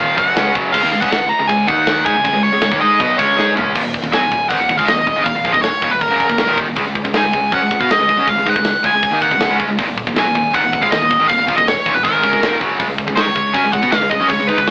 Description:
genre	heavy metal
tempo	159 BPM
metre	4/4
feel	straight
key	Eb minor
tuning	A4 = 440 Hz
part	nasal lead guitar with a parked wah	melody	0.0-14.7 s	Bb4 to Bb5	-14 LUFS	equal	overdrive
part	heavy high-gain guitar	riff	0.0-14.7 s	Eb2 to Ab4	-22 LUFS	left 1 dB	distortion
part	tight distorted guitar	riff	0.0-14.7 s	Eb2 to Ab4	-20 LUFS	right 1 dB	distortion
part	modern bright fingered electric bass	bass	0.0-14.7 s	Eb1 to Cb3	-26 LUFS	equal	none
part	tight metal drum kit	drums	0.0-14.7 s	china cymbal, crash cymbal, hi-hat, kick drum, snare drum, toms	-20 LUFS	equal	none
room	light reverb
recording	rough rehearsal-room recording, warm saturation, AM radio sound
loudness	-12 LUFS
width	side -28 dB against mid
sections	0.0-3.8 A section; 3.8-14.7 B section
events	drum fill 3.4-3.8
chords	0.0 Gb5; 0.7 Db5; 1.7 Eb5; 2.1 Db5; 3.8 Ebm; 6.8 Db5; 9.8 Ebm; 12.8 Db5

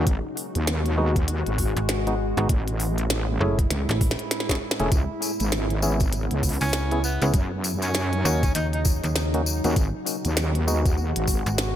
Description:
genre	glitch hop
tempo	99 BPM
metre	4/4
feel	swing 60% on 16ths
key	unclear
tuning	A4 = 440 Hz
part	warbly tape-like pad	sustained chords	0.0-11.8 s	A2 to F#4	-30 LUFS	equal	chorus, built-in reverb, sidechain pumping
part	mellow clav	stabs	0.0-10.9 s	G#3 to G#4	-30 LUFS	left 1 dB	sidechain pumping, ping-pong delay
part	wobble bass	bass	0.0-11.4 s	E1 to F#2	-25 LUFS	equal	chorus, overdrive
part	electronic kick drum	drums	0.1-11.4 s	none	-23 LUFS	equal	none
part	glitchy drum kit	drums	0.1-11.7 s	hi-hat, rim click, snare drum	-29 LUFS	equal	none
part	slap-like FM bass	bass	1.8-11.8 s	F#1 to D#2	-25 LUFS	equal	none
part	tambourine	percussion	4.9-11.7 s	none	-33 LUFS	left 4 dB	none
part	breathy tenor saxophone	melody	6.6-8.8 s	B3 to D#4	-31 LUFS	equal	ping-pong delay
room	little or no reverb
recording	none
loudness	-21 LUFS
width	side -11 dB against mid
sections	0.0-11.8 A section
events	drum fill 3.7-4.9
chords	0.1 G#m7; 2.5 F#m9 (rootless); 4.9 C#m7; 7.3 D#m7; 9.8 G#m7

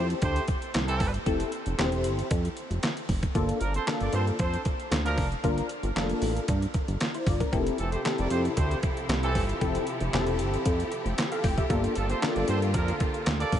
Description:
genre	early-eighties boogie funk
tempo	115 BPM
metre	4/4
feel	straight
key	F major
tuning	A4 = 440 Hz
part	warm horn section	second line	0.0-13.6 s	E3 to D5	-34 LUFS	right 2 dB	none
part	funky polysynth comp	accompaniment	0.0-12.7 s	Bb3 to G5	-31 LUFS	left 2 dB	chorus
part	chorused synth bass	bass	0.0-13.6 s	E1 to G2	-29 LUFS	equal	none
part	detuned 8-bit digital drum machine	drums	0.1-13.6 s	handclaps, hi-hat, kick drum, snare drum	-30 LUFS	equal	overdrive
part	warm studio string section	sustained chords	7.5-13.6 s	C3 to A4	-34 LUFS	right 1 dB	none
room	moderate huge ambient reverb, RT60 7.5 s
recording	dreamy mix soaked in reverb, nothing above 10.7 kHz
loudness	-25 LUFS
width	side -10 dB against mid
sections	0.0-13.6 A section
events	none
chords	0.0 Fmaj7sus2; 3.4 Gm9; 7.5 Fmaj9; 11.7 Gm9

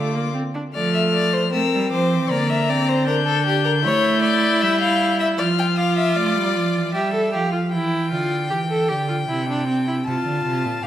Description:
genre	classical, baroque-style fugue for string quartet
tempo	77 BPM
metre	4/4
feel	straight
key	D minor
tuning	A4 = 439 Hz
part	clear violin	melody	0.0-6.9 s	Bb5 to G6	-24 LUFS	left 10 dB	none
part	clear violin	second line	0.0-10.9 s	F4 to A5	-24 LUFS	left 3 dB	none
part	rich viola	accompaniment	0.0-10.9 s	A3 to A4	-23 LUFS	equal	none
part	clear cello	bass	0.0-10.9 s	Bb2 to A3	-23 LUFS	right 3 dB	none
room	wet recital hall reverb, RT60 1.6 s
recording	none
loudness	-18 LUFS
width	side -11 dB against mid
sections	0.8-6.9 A section; 6.9-10.9 B section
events	none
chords	0.0 Dm; 0.8 Dm/F; 2.3 Gm/D; 3.8 A7; 5.4 Dm/F; 6.9 G5; 8.5 C; 10.1 F

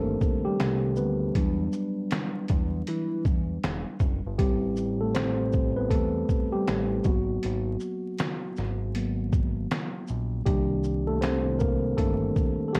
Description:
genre	lo-fi hip hop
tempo	79 BPM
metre	4/4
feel	swing 64% on 16ths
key	unclear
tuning	A4 = 440 Hz
part	mellow tine electric piano	accompaniment	0.0-12.8 s	Eb3 to C5	-30 LUFS	equal	cassette tape, low-pass filter
part	fat analog bass	bass	0.0-12.8 s	E1 to E3	-33 LUFS	equal	none
part	trip hop sampler-style drum kit	drums	0.2-12.8 s	finger snaps, hi-hat, kick drum, shaker, snare drum	-30 LUFS	equal	none
room	moderate studio reverb, RT60 0.5 s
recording	worn, warbling old tape, cassette tape, vinyl crackle, warbly pitch drift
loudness	-27 LUFS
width	mono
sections	0.0-12.8 A section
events	tine electric piano solo 0.0-12.8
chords	0.0 Cm7; 1.4 Em7; 4.4 Am7; 7.0 G#m7; 10.5 Cm7

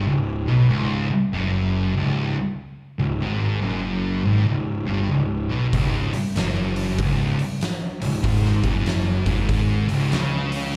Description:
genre	stoner and doom metal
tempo	96 BPM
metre	4/4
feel	swing 64% on 8ths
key	unclear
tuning	A4 = 440 Hz
part	thick fuzz guitar	riff	0.0-10.7 s	C#2 to C#3	-27 LUFS	equal	distortion, slapback echo
part	thick fuzz guitar	riff	0.0-10.7 s	C#2 to C#3	-27 LUFS	equal	distortion, slapback echo
part	fuzz picked electric bass	bass	0.0-10.7 s	C#1 to C#2	-28 LUFS	equal	overdrive
part	oversized low-tuned drum kit	drums	5.7-10.6 s	hi-hat, kick drum, snare drum	-27 LUFS	equal	none
room	studio reverb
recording	live gig heard through the venue's PA, club reverb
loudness	-22 LUFS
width	mono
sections	0.0-10.8 A section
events	none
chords	0.0 C#5

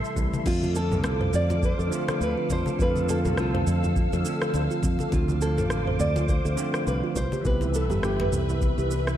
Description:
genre	sunset chillout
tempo	103 BPM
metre	4/4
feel	swing 57% on 16ths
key	unclear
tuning	A4 = 440 Hz
part	nylon-string guitar	melody	0.0-9.2 s	E4 to D5	-31 LUFS	right 1 dB	vintage 12-bit sampler grit, tape echo
part	bell-like tine electric piano	accompaniment	0.0-9.2 s	C3 to G4	-31 LUFS	equal	auto-pan, tape echo
part	soft string machine	sustained chords	0.0-9.2 s	A4 to E6	-33 LUFS	equal	phaser, ensemble chorus
part	smooth R&B drum kit	drums	0.0-9.2 s	crash cymbal, rim click, shaker, toms	-32 LUFS	equal	none
part	fingered electric bass	bass	0.2-9.2 s	G1 to F2	-27 LUFS	equal	none
part	electronic kick drum	drums	0.2-8.7 s	none	-27 LUFS	equal	none
part	congas	percussion	0.2-8.8 s	none	-35 LUFS	left 2 dB	none
part	kalimba	arpeggios	0.5-9.2 s	B3 to C5	-34 LUFS	right 3 dB	tape echo
room	light reverb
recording	dark, warm production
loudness	-22 LUFS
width	side -11 dB against mid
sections	0.5-9.2 A section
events	none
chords	0.5 F6; 5.1 Dm7; 7.2 Cmaj7

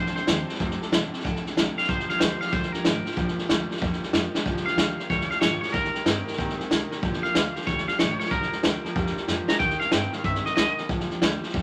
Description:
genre	rockabilly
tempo	187 BPM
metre	4/4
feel	swing 65% on 8ths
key	Bb major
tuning	A4 = 439 Hz
part	twangy electric guitar	melody	0.0-10.9 s	Bb4 to Bb5	-30 LUFS	equal	vibrato effect
part	picked steel-string acoustic guitar	accompaniment	0.0-11.6 s	Bb2 to Bb4	-36 LUFS	equal	none
part	electric guitar through a small old amp	riff	0.0-11.6 s	F2 to C4	-36 LUFS	equal	none
part	upright bass	bass	0.0-11.6 s	F1 to Bb2	-37 LUFS	equal	none
part	vintage drum kit	drums	0.1-11.6 s	hi-hat, kick drum, snare drum	-28 LUFS	equal	none
room	moderate studio reverb, RT60 0.6 s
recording	vinyl crackle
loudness	-25 LUFS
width	mono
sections	0.0-4.5 A section; 4.5-11.6 B section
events	drum fill 4.3, 9.3-9.6; clean electric guitar solo 4.5-11.6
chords	0.0 F6; 1.9 Bb6; 5.7 Eb6; 7.0 Bb6; 9.6 Eb6; 10.9 Bb6

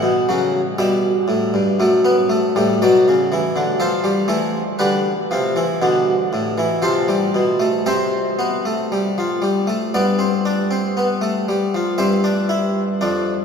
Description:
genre	classical, baroque-style 4-part fugue for harpsichord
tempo	59 BPM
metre	4/4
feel	straight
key	C major from 3.8 s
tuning	A4 = 440 Hz
part	harpsichord	solo	0.0-13.4 s	F2 to F#5	-16 LUFS	equal	none
room	wet cathedral reverb, RT60 6.7 s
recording	recorded in a church or concert hall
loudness	-16 LUFS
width	side -6 dB against mid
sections	0.0-12.0 A section; 12.0-13.4 B section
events	none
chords	0.0 A; 1.8 D/F#; 3.8 F; 7.9 Gsus4/C; 9.9 G; 12.0 C/G

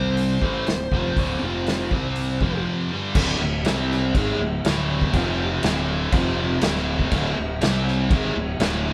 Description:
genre	blues rock power trio and southern rock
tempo	121 BPM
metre	4/4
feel	straight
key	D minor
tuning	A4 = 439 Hz
part	dark smooth lead guitar	melody	0.0-2.6 s	C5	-33 LUFS	equal	overdrive
part	biting overdriven guitar	riff	0.0-8.9 s	D2 to C4	-27 LUFS	equal	none
part	fuzz fingered electric bass	bass	0.0-8.9 s	D1 to C2	-28 LUFS	equal	overdrive
part	vintage drum kit	drums	0.2-8.7 s	crash cymbal, hi-hat, kick drum, snare drum	-27 LUFS	equal	none
room	moderate stone room reverb, RT60 1.0 s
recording	band playing live in one room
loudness	-22 LUFS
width	mono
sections	0.0-3.2 A section; 3.2-8.9 B section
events	none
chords	0.4 Dm; 1.4 F5; 1.9 C5; 2.4 F5; 2.9 G5; 3.2 D5; 3.7 C5; 4.2 D5; 5.1 F5; 5.6 D5; 6.1 F5; 6.6 D5; 7.6 C5; 8.1 D5

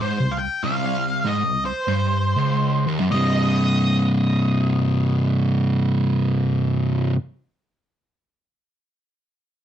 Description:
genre	metal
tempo	96 BPM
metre	4/4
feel	swing 61% on 8ths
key	C minor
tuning	A4 = 439 Hz
part	octave-fuzz lead guitar	melody	0.0-6.4 s	C5 to G5	-25 LUFS	equal	wah, distortion, slapback echo
part	fuzz guitar	riff	0.0-7.2 s	C2 to C3	-19 LUFS	equal	distortion
room	light reverb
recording	dark, warm production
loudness	-18 LUFS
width	side -10 dB against mid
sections	0.0-3.1 A section; 3.1-5.6 B section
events	none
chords	0.0 C5; 3.1 Cm

